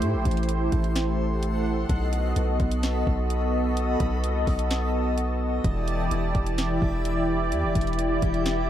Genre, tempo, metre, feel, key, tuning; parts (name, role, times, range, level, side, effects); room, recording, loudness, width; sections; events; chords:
hip hop, atmospheric cloud-rap; 128 BPM; 4/4; half-time; E minor; A4 = 441 Hz
warm analog pad; sustained chords; 0.0-8.7 s; E3 to D#5; -26 LUFS; equal; chorus, sidechain pumping
long sustained 808-style bass; bass; 0.0-8.7 s; E1 to A2; -26 LUFS; equal
smooth R&B drum kit; drums; 0.0-8.6 s; hi-hat, kick drum, snare drum; -28 LUFS; equal
backwards swelling texture; texture; 0.0-8.7 s; G4 to D6; -37 LUFS; equal; built-in reverb
swell; sound effects; 7.8-8.7 s; -35 LUFS; equal
light reverb; -23 LUFS; side -11 dB against mid
0.0-8.7 A section
swell 7.8-8.7
0.0 Am7; 1.9 B7; 5.6 Em7